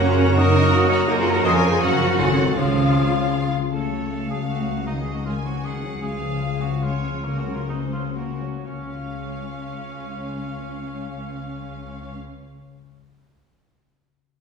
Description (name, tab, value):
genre	classical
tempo	116-166 BPM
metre	3/4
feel	straight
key	Db major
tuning	A4 = 440 Hz
part	rich symphonic violin section	melody	0.0-12.2 s	Bb4 to Bb5	-33 LUFS	left 3 dB	none
part	mellow cor anglais	second line	0.0-12.2 s	F3 to A4	-32 LUFS	right 2 dB	none
part	rich symphonic violin section	second line	0.0-12.2 s	Ab3 to C5	-34 LUFS	left 2 dB	none
part	silver concert flute	second line	0.0-3.3 s	Db5 to Eb6	-28 LUFS	left 1 dB	none
part	warm clarinet	second line	0.0-3.5 s	Ab4 to Bb4	-32 LUFS	left 1 dB	none
part	rich symphonic viola section	accompaniment	0.0-12.2 s	Eb3 to C5	-30 LUFS	right 1 dB	none
part	warm bassoon	accompaniment	0.0-3.5 s	F3 to Gb3	-31 LUFS	equal	none
part	bright trombone section	sustained chords	0.0-3.5 s	Db3 to Db4	-29 LUFS	right 2 dB	none
part	dark French horn section	sustained chords	0.0-3.3 s	Db4 to Eb5	-27 LUFS	equal	none
part	concert harp	arpeggios	0.0-12.6 s	F2 to Bb5	-27 LUFS	left 5 dB	none
part	mellow trumpet section	stabs	0.0-3.5 s	F5 to Ab5	-32 LUFS	left 1 dB	none
part	rich symphonic double bass section	bass	0.0-12.2 s	Ab1 to Gb2	-27 LUFS	right 2 dB	none
part	warm symphonic cello section	bass	0.0-12.2 s	Db2 to Bb4	-28 LUFS	right 1 dB	none
room	wet scoring stage reverb, RT60 1.7 s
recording	heard from further back in the room, studio ambience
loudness	-19 LUFS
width	side -6 dB against mid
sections	0.0-3.7 A section; 3.7-8.7 B section; 8.7-11.6 C section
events	slowing down 5.5-8.7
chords	0.4 Ebm/Gb; 1.4 Db/F; 1.8 Gbmaj7; 2.2 Ab7b9; 2.6 Db; 3.7 Gbm/Db; 4.9 Ab7/Db; 6.0 Db; 7.3 Gb/Db; 8.7 Db